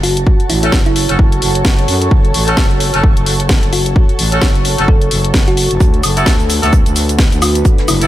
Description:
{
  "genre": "bass house",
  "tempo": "130 BPM",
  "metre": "4/4",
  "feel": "swing 58% on 16ths",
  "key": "F# minor",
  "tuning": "A4 = 440 Hz",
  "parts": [
    { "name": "thumb-piano-like synth pluck", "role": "melody", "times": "0.0-8.1 s", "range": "E4 to A4", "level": "-20 LUFS", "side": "right 1 dB", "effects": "chorus, tape echo" },
    { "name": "growling FM bass", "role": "bass", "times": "0.0-8.1 s", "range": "F#1 to F#2", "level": "-16 LUFS", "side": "equal", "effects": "tube saturation, sidechain pumping" },
    { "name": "house drum kit", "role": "drums", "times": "0.0-8.1 s", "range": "cabasa, hi-hat, snare drum, woodblock", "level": "-17 LUFS", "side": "left 1 dB", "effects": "none" },
    { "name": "granular cloud pad", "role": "texture", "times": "0.0-8.1 s", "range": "F#4 to A5", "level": "-20 LUFS", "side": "right 1 dB", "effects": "built-in reverb, sidechain pumping" },
    { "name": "electronic kick drum", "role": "drums", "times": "0.3-7.8 s", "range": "none", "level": "-11 LUFS", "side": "equal", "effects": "none" },
    { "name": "bright horn section", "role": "stabs", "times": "0.6-8.1 s", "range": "A3 to A4", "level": "-19 LUFS", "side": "left 1 dB", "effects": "sidechain pumping, tape echo" },
    { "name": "dark analog pad", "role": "sustained chords", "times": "6.5-8.1 s", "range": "D4 to F#5", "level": "-24 LUFS", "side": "left 1 dB", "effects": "chorus, sidechain pumping" },
    { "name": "soft brush drum kit", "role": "drums", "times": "5.8-8.0 s", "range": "hi-hat, snare drum", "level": "-28 LUFS", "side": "right 5 dB", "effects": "none" }
  ],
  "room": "little or no reverb",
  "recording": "none",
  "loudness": "-10 LUFS",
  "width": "side -14 dB against mid",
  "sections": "0.0-8.1 A section",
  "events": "none",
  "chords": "0.0 F#m; 5.8 D6",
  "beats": "| 0.27 0.73 1.19 1.65 | 2.11 2.58 3.04 3.50 | 3.96 4.42 4.88 5.34 | 5.80 6.27 6.73 7.19 | 7.65"
}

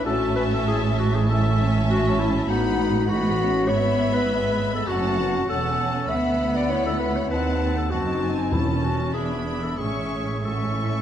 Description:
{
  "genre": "quick classical-period movement for symphony orchestra",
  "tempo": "98 BPM",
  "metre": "4/4",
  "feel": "rubato",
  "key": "A major",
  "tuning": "A4 = 440 Hz",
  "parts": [
    { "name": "warm studio violin section", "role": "melody", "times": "0.0-11.0 s", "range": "A5 to C#6", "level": "-33 LUFS", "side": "left 4 dB", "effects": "none" },
    { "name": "warm clarinet", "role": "second line", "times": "0.0-11.0 s", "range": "D#4 to E5", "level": "-26 LUFS", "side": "left 1 dB", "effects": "none" },
    { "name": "warm studio violin section", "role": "second line", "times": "0.0-11.0 s", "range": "E5 to A5", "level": "-32 LUFS", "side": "left 2 dB", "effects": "none" },
    { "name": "warm chamber viola section", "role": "accompaniment", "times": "0.0-11.0 s", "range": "B3 to D4", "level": "-30 LUFS", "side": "right 3 dB", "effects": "none" },
    { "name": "rich chamber double bass section", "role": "bass", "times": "0.0-11.0 s", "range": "E1 to D#2", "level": "-28 LUFS", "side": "right 3 dB", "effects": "none" },
    { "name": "warm chamber cello section", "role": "bass", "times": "0.0-11.0 s", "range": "D2 to A2", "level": "-27 LUFS", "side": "right 2 dB", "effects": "none" },
    { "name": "mellow French horn section", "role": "sustained chords", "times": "0.1-11.0 s", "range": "G#3 to F#4", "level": "-30 LUFS", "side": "left 5 dB", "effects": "none" },
    { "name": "timpani", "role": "percussion", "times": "8.5-9.1 s", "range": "E2", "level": "-28 LUFS", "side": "left 1 dB", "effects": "none" }
  ],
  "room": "wet concert hall reverb, RT60 1.9 s",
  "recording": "dark, warm production",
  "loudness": "-20 LUFS",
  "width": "side -10 dB against mid",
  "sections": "0.0-11.0 A section",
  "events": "none",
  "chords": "0.1 A; 2.5 B7/A; 3.7 E/G#; 4.9 F#m; 6.1 Bm/D; 7.3 D#dim7; 8.5 A/E; 9.1 E7; 9.8 A",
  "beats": "| 0.06 0.68 1.29 1.90 | 2.49 3.09 3.69 4.29 | 4.89 5.49 6.10 6.70 | 7.31 7.92 8.53 9.15 | 9.79 10.45"
}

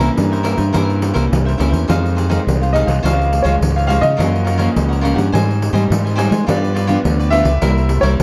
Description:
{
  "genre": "samba and choro",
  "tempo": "105 BPM",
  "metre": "4/4",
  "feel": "straight",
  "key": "unclear",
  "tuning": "A4 = 441 Hz",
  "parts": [
    { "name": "warm baby grand piano", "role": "melody", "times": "0.0-8.2 s", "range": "Db5 to Bb5", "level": "-23 LUFS", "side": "equal", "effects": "none" },
    { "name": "cavaquinho", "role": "accompaniment", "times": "0.0-8.1 s", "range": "Eb4 to Ab5", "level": "-25 LUFS", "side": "equal", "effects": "none" },
    { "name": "nylon-string guitar", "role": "accompaniment", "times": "0.0-8.2 s", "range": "F2 to E4", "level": "-23 LUFS", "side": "equal", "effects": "none" },
    { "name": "fuzz fingered electric bass", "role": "bass", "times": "0.0-8.2 s", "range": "C2 to Ab3", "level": "-19 LUFS", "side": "equal", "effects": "overdrive" },
    { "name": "pandeiro", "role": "percussion", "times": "0.0-8.2 s", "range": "none", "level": "-24 LUFS", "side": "equal", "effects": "none" }
  ],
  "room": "light reverb",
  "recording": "dark, warm production",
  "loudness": "-16 LUFS",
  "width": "mono",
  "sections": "0.0-8.2 A section",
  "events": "none",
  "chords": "0.0 C7b9; 1.9 Fm7; 3.0 Dbmaj7; 4.2 Gbmaj7; 5.3 Abmaj7; 6.5 G7; 7.6 C7",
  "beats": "0.17 0.74 1.32 | 1.89 2.46 3.04 3.61 | 4.18 4.76 5.33 5.90 | 6.48 7.05 7.62 8.20"
}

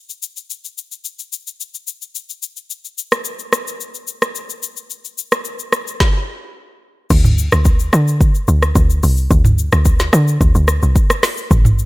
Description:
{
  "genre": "amapiano",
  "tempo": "109 BPM",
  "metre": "4/4",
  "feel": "straight",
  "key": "unclear",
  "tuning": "A4 = 440 Hz",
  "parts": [
    { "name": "afro-pop drum kit", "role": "drums", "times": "0.1-11.9 s", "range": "crash cymbal, hi-hat, kick drum, rim click, shaker, snare drum, toms", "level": "-16 LUFS", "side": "equal", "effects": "none" },
    { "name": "woody log drum bass", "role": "bass", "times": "7.1-11.9 s", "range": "A1 to D3", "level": "-14 LUFS", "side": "equal", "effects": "none" }
  ],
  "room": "little or no reverb",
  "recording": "none",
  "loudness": "-13 LUFS",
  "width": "side -20 dB against mid",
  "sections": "0.0-7.1 A section; 7.1-11.9 B section",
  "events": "none",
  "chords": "none",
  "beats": "| 0.50 1.05 1.60 2.15 | 2.70 3.25 3.80 4.35 | 4.90 5.45 6.00 6.55 | 7.11 7.66 8.21 8.76 | 9.31 9.86 10.41 10.96 | 11.51"
}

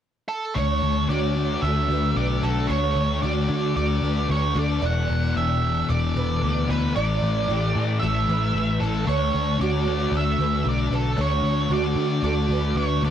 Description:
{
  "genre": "rock",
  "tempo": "113 BPM",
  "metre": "4/4",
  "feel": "straight",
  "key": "D major",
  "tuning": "A4 = 440 Hz",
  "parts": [
    { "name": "octave-fuzz lead guitar", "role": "melody", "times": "0.3-13.1 s", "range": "A4 to F#5", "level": "-27 LUFS", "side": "right 3 dB", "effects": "distortion, digital delay" },
    { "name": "twangy electric guitar", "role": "riff", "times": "0.5-13.1 s", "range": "none", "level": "barely audible", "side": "none", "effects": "none" },
    { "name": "picked twelve-string acoustic guitar", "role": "arpeggios", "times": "0.6-13.1 s", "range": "F#4 to D5", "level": "-30 LUFS", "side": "right 7 dB", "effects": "ensemble chorus, digital delay" },
    { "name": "thick fuzz guitar", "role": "riff", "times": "0.6-13.1 s", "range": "E2 to D4", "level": "-26 LUFS", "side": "left 7 dB", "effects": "distortion, analog chorus" },
    { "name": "vintage muted picked electric bass", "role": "bass", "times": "0.6-13.1 s", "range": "E1 to D3", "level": "-24 LUFS", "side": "right 1 dB", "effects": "none" }
  ],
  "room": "little or no reverb",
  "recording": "dark, warm production",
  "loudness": "-20 LUFS",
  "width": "side -9 dB against mid",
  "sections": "0.6-13.1 A section",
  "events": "none",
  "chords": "0.0 N.C.; 0.6 Dmaj7; 4.8 Em7; 6.9 A7sus4; 9.1 Dmaj7",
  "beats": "0.03 | 0.56 1.10 1.63 2.16 | 2.70 3.23 3.76 4.29 | 4.82 5.35 5.88 6.42 | 6.95 7.47 8.01 8.53 | 9.06 9.59 10.12 10.65 | 11.18 11.71 12.23 12.76"
}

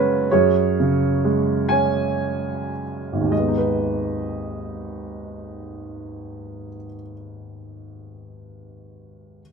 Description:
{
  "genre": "classical, lyrical solo piano",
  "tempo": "33-44 BPM (dotted quarters)",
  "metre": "6/8",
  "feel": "rubato",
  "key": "G# minor",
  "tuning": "A4 = 440 Hz",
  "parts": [
    { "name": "clear upright piano", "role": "solo", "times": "0.0-9.4 s", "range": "G#1 to G#5", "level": "-21 LUFS", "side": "right 2 dB", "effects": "none" }
  ],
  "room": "light reverb",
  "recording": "minimal, uncompressed stereo recording",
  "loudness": "-19 LUFS",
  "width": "side -5 dB against mid",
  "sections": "0.3-3.3 A section; 3.3-6.9 B section",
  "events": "slowing down 0.0-3.3",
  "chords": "0.3 F#sus2; 3.3 G#m",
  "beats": "| 0.28 1.69 | 3.32 5.12"
}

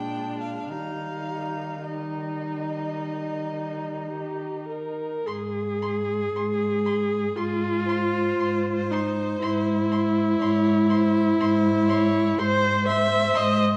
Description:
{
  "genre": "classical, slow romantic movement for string quartet",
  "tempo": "50-63 BPM",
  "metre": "4/4",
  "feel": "rubato",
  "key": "Eb major, Ab major from 5.3 s",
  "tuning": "A4 = 439 Hz",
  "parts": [
    { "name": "rich violin", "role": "melody", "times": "0.0-13.8 s", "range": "Ab4 to G5", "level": "-35 LUFS", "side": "equal", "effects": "none" },
    { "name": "rich violin", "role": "second line", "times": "0.0-13.4 s", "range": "D4 to C6", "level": "-37 LUFS", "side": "equal", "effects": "none" },
    { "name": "rich viola", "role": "accompaniment", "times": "0.0-13.8 s", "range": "G3 to Fb5", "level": "-27 LUFS", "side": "equal", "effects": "none" },
    { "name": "warm cello", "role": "bass", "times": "0.0-13.8 s", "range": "Ab2 to Eb3", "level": "-30 LUFS", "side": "equal", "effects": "none" }
  ],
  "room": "wet scoring stage reverb, RT60 1.6 s",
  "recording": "worn, warbling old tape, cassette tape, warbly pitch drift",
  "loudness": "-25 LUFS",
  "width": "mono",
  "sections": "0.0-5.3 A section; 5.3-13.8 B section",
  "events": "none",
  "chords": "0.0 Bb7; 0.7 Eb; 5.3 Ab",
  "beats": "| 0.70 1.85 2.98 4.11 | 5.28 6.34 7.36 8.40 | 9.42 10.41 11.40 12.39 | 13.36"
}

